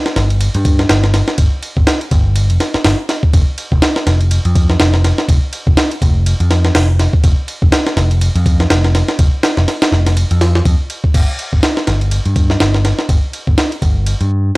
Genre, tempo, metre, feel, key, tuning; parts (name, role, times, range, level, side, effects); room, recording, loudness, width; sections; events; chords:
breakbeat, breaks; 123 BPM; 4/4; swing 57% on 16ths; A4 = 440 Hz
breakbeat sampler-style drum kit; drums; 0.1-14.3 s; crash cymbal, hi-hat, kick drum, ride cymbal, snare drum; -14 LUFS; equal
picked electric bass; bass; 0.2-14.5 s; F1 to G2; -13 LUFS; equal; tube saturation
little or no reverb; dry, gritty hardware recording, transformer saturation, cassette tape; -11 LUFS; side -22 dB against mid
0.0-11.1 A section; 11.1-14.6 B section
drop 0.0-11.1